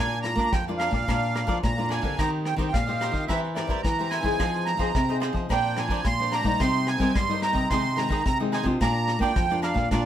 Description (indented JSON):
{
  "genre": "samba and choro",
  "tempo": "109 BPM",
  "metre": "4/4",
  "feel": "straight",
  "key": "unclear",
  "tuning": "A4 = 439 Hz",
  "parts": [
    { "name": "accordion", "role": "melody", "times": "0.0-10.1 s", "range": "D5 to C6", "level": "-27 LUFS", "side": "right 3 dB", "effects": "light tremolo tuning" },
    { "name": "cavaquinho", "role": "accompaniment", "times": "0.0-10.1 s", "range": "D4 to F5", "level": "-32 LUFS", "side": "right 2 dB", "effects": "none" },
    { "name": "nylon-string guitar", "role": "accompaniment", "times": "0.0-10.1 s", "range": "F2 to Ab4", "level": "-32 LUFS", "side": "left 4 dB", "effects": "none" },
    { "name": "nylon-string guitar", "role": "bass", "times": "0.0-10.1 s", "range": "Bb2 to C4", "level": "-28 LUFS", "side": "equal", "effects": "none" },
    { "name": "vintage brush drum kit", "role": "drums", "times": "0.1-10.0 s", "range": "hi-hat, kick drum, rim click", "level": "-29 LUFS", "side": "equal", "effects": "none" }
  ],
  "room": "moderate studio reverb, RT60 0.6 s",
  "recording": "minimal, uncompressed stereo recording",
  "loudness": "-22 LUFS",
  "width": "side -10 dB against mid",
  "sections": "0.0-10.1 A section",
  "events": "none",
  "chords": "0.0 Bb; 2.2 Eb6; 3.3 C7/E; 4.4 Fm7; 5.5 Bbadd9; 6.6 Cm7; 7.7 Ab/C; 8.8 Bb"
}